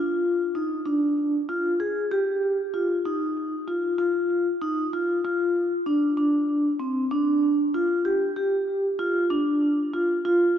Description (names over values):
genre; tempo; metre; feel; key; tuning
progressive instrumental, progressive; 96 BPM; 5/4; straight; F dorian; A4 = 440 Hz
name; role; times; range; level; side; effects
vibraphone with medium mallets; solo; 0.0-10.6 s; C4 to Ab4; -22 LUFS; equal; analog delay
room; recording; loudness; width
wet lush hall reverb, RT60 2.6 s; dreamy mix soaked in reverb, nothing above 7.8 kHz; -22 LUFS; side -9 dB against mid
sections
0.0-2.1 A section; 2.1-10.6 B section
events
none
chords
none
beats
0.23 0.86 1.48 | 2.11 2.73 3.36 3.98 4.61 | 5.24 5.86 6.49 7.11 7.74 | 8.37 8.99 9.62 10.24